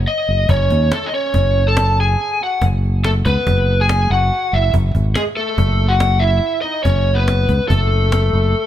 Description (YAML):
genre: progressive instrumental, band music in an uneven meter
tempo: 142 BPM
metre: 5/4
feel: straight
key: F# dorian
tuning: A4 = 440 Hz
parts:
  - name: overdriven fingered electric bass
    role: bass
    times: 0.0-8.5 s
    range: F#1 to D#2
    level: -16 LUFS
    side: equal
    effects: none
  - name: lead guitar through a small cranked amp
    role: melody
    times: 0.1-8.7 s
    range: G#4 to A5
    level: -18 LUFS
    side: equal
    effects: overdrive, tape echo
  - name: cajon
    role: drums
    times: 0.1-8.6 s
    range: none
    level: -22 LUFS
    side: equal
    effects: none
  - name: brilliant trombone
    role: second line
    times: 0.5-8.7 s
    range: G#3 to A4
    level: -26 LUFS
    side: left 2 dB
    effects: tape echo
room: light reverb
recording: none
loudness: -14 LUFS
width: side -11 dB against mid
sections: 0.0-8.7 A section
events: none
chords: 0.0 F#m6; 1.3 F#5; 3.5 F#madd9; 5.6 F#5; 7.7 F#m